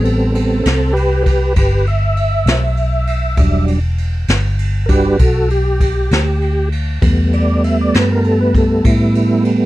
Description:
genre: slow blues.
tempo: 66 BPM (dotted quarters).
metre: 12/8.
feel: straight.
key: unclear.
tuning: A4 = 440 Hz.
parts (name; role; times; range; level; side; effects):
mellow tonewheel organ; sustained chords; 0.0-9.7 s; F#3 to E5; -16 LUFS; right 1 dB; slow rotary speaker, chorus vibrato.
vintage muted fingered electric bass; bass; 0.0-9.7 s; E1 to A2; -16 LUFS; equal; none.
jazz brush drum kit; drums; 0.0-9.6 s; kick drum, ride cymbal, snare drum; -18 LUFS; equal; none.
room: little or no reverb.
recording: none.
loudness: -12 LUFS.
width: side -16 dB against mid.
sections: 0.0-9.7 A section.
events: tonewheel organ solo 0.0-9.7.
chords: 0.0 Am9; 3.4 Em9; 7.0 Asus2.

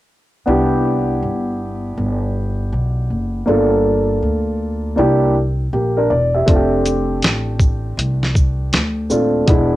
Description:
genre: hip hop, jazz-hop.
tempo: 80 BPM.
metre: 4/4.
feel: swing 64% on 16ths.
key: C major.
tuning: A4 = 439 Hz.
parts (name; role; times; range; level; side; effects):
dark concert grand piano; accompaniment; 0.5-9.8 s; G#3 to E5; -18 LUFS; equal; none.
upright bass; bass; 0.5-9.8 s; Eb1 to D2; -20 LUFS; equal; none.
lo-fi sampler-style drum kit; drums; 6.5-9.7 s; hi-hat, kick drum, shaker, snare drum; -15 LUFS; equal; cassette tape.
room: moderate studio reverb, RT60 0.5 s.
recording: home recording on cassette.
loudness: -15 LUFS.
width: side -16 dB against mid.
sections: 0.5-9.8 A section.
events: none.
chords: 0.5 Cmaj7; 3.5 Gm7; 5.0 C7; 6.5 F69.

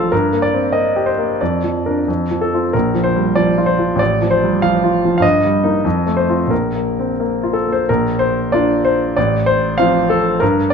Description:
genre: classical, romantic character piece for solo piano.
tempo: 85-100 BPM.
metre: 2/4.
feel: rubato.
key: Bb major.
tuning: A4 = 439 Hz.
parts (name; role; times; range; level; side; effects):
clear grand piano; solo; 0.0-10.7 s; A1 to F5; -14 LUFS; equal; none.
room: moderate large studio reverb, RT60 1.4 s.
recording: dark, warm production.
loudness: -14 LUFS.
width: side -6 dB against mid.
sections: 0.0-7.9 A section; 7.9-10.7 A section.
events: none.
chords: 0.1 Gmadd11; 1.4 Bb/F; 2.1 F; 2.7 Bb5; 4.0 F/A; 5.2 Eb/G; 5.8 F7; 6.5 Bb5; 7.9 Bb; 9.2 F/A.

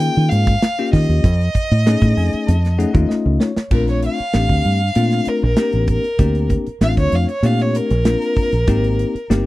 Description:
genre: electric jazz fusion.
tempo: 97 BPM.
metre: 4/4.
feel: straight.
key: Bb major from 3.7 s.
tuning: A4 = 440 Hz.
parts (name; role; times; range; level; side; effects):
clear violin; melody; 0.0-9.5 s; Bb4 to G5; -22 LUFS; equal; tape echo.
bell-like tine electric piano; accompaniment; 0.0-9.5 s; A3 to A5; -21 LUFS; left 4 dB; none.
fingered electric bass; bass; 0.0-9.4 s; G1 to Eb3; -16 LUFS; equal; none.
modern studio drum kit; drums; 0.0-9.5 s; crash cymbal, hi-hat, kick drum, snare drum; -19 LUFS; right 1 dB; none.
room: little or no reverb.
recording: dry, close 1970s-style studio recording.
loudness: -14 LUFS.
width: side -17 dB against mid.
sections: 0.0-3.7 A section; 3.7-9.5 B section.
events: tine electric piano fill 1.9-3.7; drum fill 3.1-3.7; violin solo 3.7-9.5.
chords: 0.0 Eb9sus4; 1.2 F7alt; 3.7 Bbmaj9; 8.7 Abmaj9.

